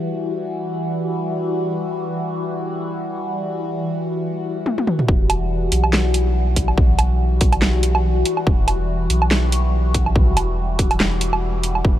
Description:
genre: deep dubstep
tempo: 142 BPM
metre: 4/4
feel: swing 56% on 16ths, half-time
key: E minor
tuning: A4 = 440 Hz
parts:
  - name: overtone-sweeping drone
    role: sustained chords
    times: 0.0-12.0 s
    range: E3 to F#4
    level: -23 LUFS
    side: left 1 dB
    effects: chorus, built-in reverb, phaser
  - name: dubstep drum kit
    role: drums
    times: 4.7-11.8 s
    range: handclaps, hi-hat, snare drum, toms, woodblock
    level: -21 LUFS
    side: right 1 dB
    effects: none
  - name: soft dub sub bass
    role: bass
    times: 5.1-12.0 s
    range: E1 to B1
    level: -19 LUFS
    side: equal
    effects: none
  - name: electronic kick drum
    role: drums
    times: 5.1-11.9 s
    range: none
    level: -18 LUFS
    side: equal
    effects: none
room: light reverb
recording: none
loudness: -17 LUFS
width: side -12 dB against mid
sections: 0.0-5.1 A section; 5.1-12.0 B section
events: drum fill 4.7-5.1; drop 5.1-12.0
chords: 0.0 Emadd9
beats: | 0.02 0.44 0.86 1.28 | 1.71 2.13 2.55 2.97 | 3.40 3.82 4.24 4.66 | 5.09 5.51 5.93 6.35 | 6.78 7.20 7.62 8.04 | 8.47 8.89 9.31 9.73 | 10.16 10.58 11.00 11.42 | 11.85

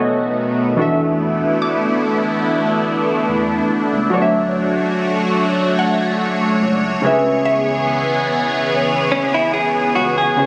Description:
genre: contemporary R&B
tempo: 72 BPM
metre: 4/4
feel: swing 54% on 16ths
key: unclear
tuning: A4 = 436 Hz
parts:
  - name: warm analog keys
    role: accompaniment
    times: 0.0-10.5 s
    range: B2 to E5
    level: -22 LUFS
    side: equal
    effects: chorus
  - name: lush unison pad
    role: sustained chords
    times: 0.0-10.5 s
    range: D#3 to C#5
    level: -20 LUFS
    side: equal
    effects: chorus, phaser
  - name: smooth synth bass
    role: bass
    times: 0.8-10.3 s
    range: E1 to E2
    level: -28 LUFS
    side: equal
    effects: none
  - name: mallet-like synth pluck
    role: texture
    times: 1.6-9.9 s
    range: E5 to D6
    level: -28 LUFS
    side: equal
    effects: chorus, digital delay
  - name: direct-recorded clean electric guitar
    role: arpeggios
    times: 9.1-10.5 s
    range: C#4 to G#4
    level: -18 LUFS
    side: equal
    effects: spring reverb, digital delay
room: moderate plate reverb, RT60 3.4 s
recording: recorded on a phone in the room, studio reverb, low-pass filter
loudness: -17 LUFS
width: mono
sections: 0.8-10.5 A section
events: break 0.0-0.8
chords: 0.0 B7; 0.8 E7sus4; 4.1 Dmaj7; 7.0 C#m7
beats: | 0.79 1.62 2.45 3.29 | 4.12 4.95 5.79 6.62 | 7.45 8.29 9.12 9.95

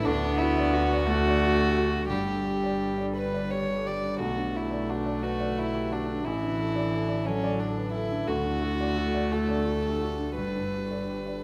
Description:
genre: neoclassical piano and strings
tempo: 58 BPM (dotted quarters)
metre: 6/8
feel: rubato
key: unclear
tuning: A4 = 440 Hz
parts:
  - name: warm violin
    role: melody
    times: 0.0-11.4 s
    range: C#4 to D5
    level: -32 LUFS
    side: equal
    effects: none
  - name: warm cello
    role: second line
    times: 0.0-11.4 s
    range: E3 to B3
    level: -33 LUFS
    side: equal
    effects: none
  - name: warm upright piano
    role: accompaniment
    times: 0.0-11.4 s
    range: A1 to D5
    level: -34 LUFS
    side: equal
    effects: none
  - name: granular cloud pad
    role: sustained chords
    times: 0.1-11.4 s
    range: D3 to B4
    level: -43 LUFS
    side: equal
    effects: none
  - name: rich double bass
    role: bass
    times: 0.0-11.4 s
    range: G1 to D2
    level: -35 LUFS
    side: equal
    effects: none
room: moderate recital hall reverb, RT60 1.7 s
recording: none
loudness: -28 LUFS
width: mono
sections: 0.0-11.4 A section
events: none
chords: 0.0 D; 2.1 G; 4.2 Bm7; 6.2 Asus4; 8.3 D; 10.4 G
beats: | 0.04 1.06 | 2.09 3.14 | 4.20 5.23 | 6.24 7.26 | 8.28 9.32 | 10.38

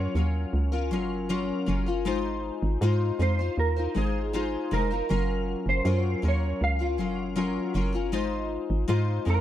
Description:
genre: indie pop, bedroom pop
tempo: 79 BPM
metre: 4/4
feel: straight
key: unclear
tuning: A4 = 442 Hz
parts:
  - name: mellow electric guitar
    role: melody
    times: 0.0-9.4 s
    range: Ab4 to F5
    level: -31 LUFS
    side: right 4 dB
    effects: ensemble chorus, slapback echo
  - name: picked steel-string acoustic guitar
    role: accompaniment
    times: 0.0-9.4 s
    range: Gb3 to C5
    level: -28 LUFS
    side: left 3 dB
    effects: analog chorus, vibrato effect
  - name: hollow knocking FM bass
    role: bass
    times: 0.0-9.4 s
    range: F1 to Ab2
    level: -27 LUFS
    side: right 1 dB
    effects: none
room: light reverb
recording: dark, warm production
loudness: -24 LUFS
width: side -12 dB against mid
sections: 0.0-9.4 A section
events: none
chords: 0.0 Gbmaj7; 2.1 Ab6; 5.1 Gbmaj7; 8.1 Ab6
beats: 0.54 1.30 | 2.06 2.82 3.58 4.34 | 5.09 5.86 6.61 7.37 | 8.13 8.89

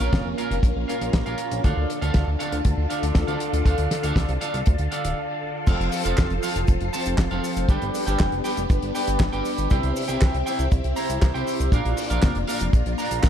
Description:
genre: italo disco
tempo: 119 BPM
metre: 4/4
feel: straight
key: F major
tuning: A4 = 443 Hz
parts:
  - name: phased string machine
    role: sustained chords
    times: 0.0-13.3 s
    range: D3 to C5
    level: -28 LUFS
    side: left 1 dB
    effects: ensemble chorus, phaser
  - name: clean electric guitar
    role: stabs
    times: 0.0-13.3 s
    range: Bb2 to Bb5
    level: -28 LUFS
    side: right 2 dB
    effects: lush chorus, ping-pong delay
  - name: chorused synth bass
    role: bass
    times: 0.0-13.3 s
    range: D1 to D2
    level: -26 LUFS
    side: equal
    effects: none
  - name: damped 70s drum kit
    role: drums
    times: 0.0-13.3 s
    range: cabasa, crash cymbal, handclaps, hi-hat, snare drum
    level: -29 LUFS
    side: left 1 dB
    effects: studio reverb
  - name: kick drum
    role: drums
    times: 0.1-13.3 s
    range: none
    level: -20 LUFS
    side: equal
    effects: studio reverb
room: light reverb, small room reverb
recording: dark, warm production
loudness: -20 LUFS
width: side -9 dB against mid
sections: 0.0-5.7 A section; 5.7-13.3 B section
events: break 5.2-5.7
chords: 0.0 Bbm; 1.6 Dm; 5.7 F; 7.7 G; 9.7 C; 11.7 Bb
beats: 0.13 0.63 1.14 | 1.64 2.15 2.65 3.15 | 3.66 4.16 4.67 5.17 | 5.67 6.18 6.68 7.19 | 7.69 8.20 8.70 9.20 | 9.71 10.21 10.72 11.22 | 11.72 12.23 12.73 13.24

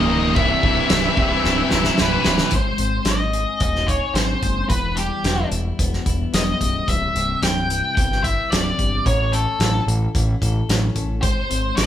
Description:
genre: quiet-loud alternative rock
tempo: 110 BPM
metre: 4/4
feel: straight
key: unclear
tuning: A4 = 440 Hz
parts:
  - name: octave-fuzz lead guitar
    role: melody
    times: 0.0-11.9 s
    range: G4 to G5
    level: -23 LUFS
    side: left 1 dB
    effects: distortion
  - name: soft string machine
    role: sustained chords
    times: 0.0-2.5 s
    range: C4 to A#5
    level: -33 LUFS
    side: left 1 dB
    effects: none
  - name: sludgy distorted guitar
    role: riff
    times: 0.0-2.5 s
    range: C2 to E4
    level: -23 LUFS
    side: right 5 dB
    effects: overdrive
  - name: tight distorted guitar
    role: riff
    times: 0.0-2.5 s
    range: C2 to E4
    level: -22 LUFS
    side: left 7 dB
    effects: distortion
  - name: growling picked electric bass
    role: bass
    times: 0.0-11.9 s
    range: B0 to A1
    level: -23 LUFS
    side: equal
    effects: overdrive
  - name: loose indie drum kit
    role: drums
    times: 0.4-11.9 s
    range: crash cymbal, hi-hat, kick drum, snare drum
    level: -22 LUFS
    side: equal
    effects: none
  - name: twelve-string electric guitar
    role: arpeggios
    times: 2.5-11.9 s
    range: C2 to A4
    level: -29 LUFS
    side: left 6 dB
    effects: none
room: moderate large studio reverb, RT60 1.3 s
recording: band playing live in one room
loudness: -17 LUFS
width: side -11 dB against mid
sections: 0.0-2.5 A section; 2.5-11.9 B section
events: drum fill 1.4-2.5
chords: 0.4 C; 2.5 G#; 4.7 Em; 6.9 C; 9.1 A; 11.2 G#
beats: | 0.37 0.91 1.45 1.99 | 2.53 3.07 3.61 4.15 | 4.70 5.24 5.79 6.33 | 6.87 7.42 7.96 8.51 | 9.05 9.60 10.14 10.69 | 11.23 11.78

